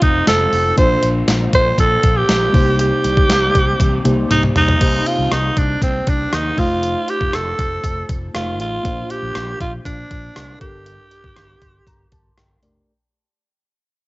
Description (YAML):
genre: 1980s-style pop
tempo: 119 BPM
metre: 4/4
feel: straight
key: C dorian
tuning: A4 = 440 Hz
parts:
  - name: breathy alto saxophone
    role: melody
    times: 0.0-12.3 s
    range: C4 to C5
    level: -18 LUFS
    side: right 1 dB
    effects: none
  - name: mellow FM electric piano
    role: accompaniment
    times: 0.0-12.9 s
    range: G2 to C6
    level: -24 LUFS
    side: left 2 dB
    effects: chorus, cassette tape
  - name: raw garage guitar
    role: accompaniment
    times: 0.0-5.3 s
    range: F2 to C4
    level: -30 LUFS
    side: left 2 dB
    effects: overdrive, lush chorus, cassette tape
  - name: mellow fretless electric bass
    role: bass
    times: 0.0-12.8 s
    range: F1 to Eb2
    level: -22 LUFS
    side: equal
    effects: none
  - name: clean 12-bit digital drum machine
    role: drums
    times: 0.0-12.7 s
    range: crash cymbal, hi-hat, kick drum, rim click, snare drum, tambourine, toms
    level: -19 LUFS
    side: equal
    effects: cassette tape
  - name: tambourine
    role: percussion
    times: 0.3-4.4 s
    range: none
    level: -34 LUFS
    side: left 3 dB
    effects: none
room: light reverb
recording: home recording on cassette, nothing above 7.8 kHz, faint mains hum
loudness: -14 LUFS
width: side -21 dB against mid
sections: 0.0-4.8 A section; 4.8-12.9 B section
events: drum fill 3.8-4.8; fade-out 4.8-12.9; FM electric piano fill 11.4-12.9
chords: 0.0 F7; 0.8 Bbadd9; 2.5 Cm7; 6.6 F7; 8.8 Bbadd9; 10.6 Gmadd9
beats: 0.28 | 0.78 1.28 1.79 2.29 | 2.80 3.30 3.80 4.31 | 4.81 5.32 5.82 6.33 | 6.83 7.33 7.84 8.34 | 8.85 9.35 9.85 10.36 | 10.86 11.37 11.87 12.38